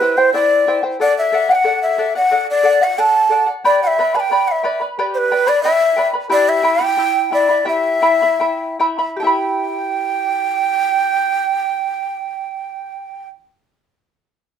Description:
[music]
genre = andean folk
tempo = 72-91 BPM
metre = 2/4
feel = straight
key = E minor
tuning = A4 = 437 Hz
[part]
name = breathy large quena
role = melody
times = 0.0-13.3 s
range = B4 to A5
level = -15 LUFS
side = equal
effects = none
[part]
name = charango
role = accompaniment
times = 0.0-13.5 s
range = E4 to B5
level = -19 LUFS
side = left 1 dB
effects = none
[sound]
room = moderate studio reverb, RT60 0.5 s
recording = minimal, uncompressed stereo recording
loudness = -14 LUFS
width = side -8 dB against mid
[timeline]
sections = 0.0-9.2 A section; 9.2-12.5 B section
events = slowing down 6.3-9.2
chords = 0.0 C; 1.0 D; 3.6 G; 6.3 Em

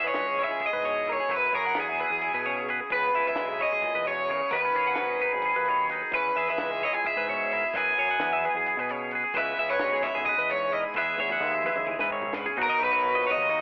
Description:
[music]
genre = math rock and midwest emo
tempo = 261 BPM (eighths)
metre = 7/8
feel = straight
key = E major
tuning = A4 = 441 Hz
[part]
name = cranked stack guitar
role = melody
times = 0.0-13.6 s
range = G#4 to G#5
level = -29 LUFS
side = equal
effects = overdrive, cassette tape
[part]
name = twangy electric guitar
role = accompaniment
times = 0.0-13.6 s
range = G#2 to B4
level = -34 LUFS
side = equal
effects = subtle chorus, cassette tape
[part]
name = twelve-string electric guitar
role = arpeggios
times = 0.0-13.6 s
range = G#4 to F#5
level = -33 LUFS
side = equal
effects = cassette tape
[part]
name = growling picked electric bass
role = bass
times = 0.0-13.6 s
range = G#1 to B2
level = -40 LUFS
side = equal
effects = overdrive
[part]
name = compact cocktail drum kit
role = drums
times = 0.1-12.6 s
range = hi-hat, kick drum, snare drum, toms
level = -42 LUFS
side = equal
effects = cassette tape
[part]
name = raw garage guitar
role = riff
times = 12.6-13.6 s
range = B2 to F#4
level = -37 LUFS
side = equal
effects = overdrive, cassette tape
[sound]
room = light reverb, small room reverb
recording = home recording on cassette, telephone sound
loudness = -26 LUFS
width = mono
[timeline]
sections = 0.0-12.6 A section; 12.6-13.6 B section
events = drum fill 11.2-12.6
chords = 0.0 E6; 1.3 F#9sus4; 2.9 C#m7; 4.5 B69; 6.1 E6; 7.7 F#9sus4; 9.4 C#m7; 11.0 Emaj7; 12.6 Bmaj9

